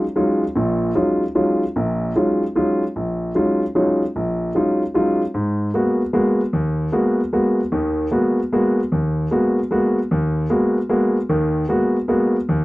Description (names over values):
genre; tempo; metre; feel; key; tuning
jazz; 151 BPM; 3/4; swing 64% on 8ths; Eb minor, G# minor from 5.3 s; A4 = 438 Hz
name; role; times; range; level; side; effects
warm grand piano; solo; 0.0-12.6 s; Bb1 to F#4; -17 LUFS; equal; none
room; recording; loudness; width
light reverb; dry, close 1970s-style studio recording; -17 LUFS; side -18 dB against mid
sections
0.0-5.3 A section; 5.3-12.6 B section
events
none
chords
0.0 Ebm11; 5.3 G#m9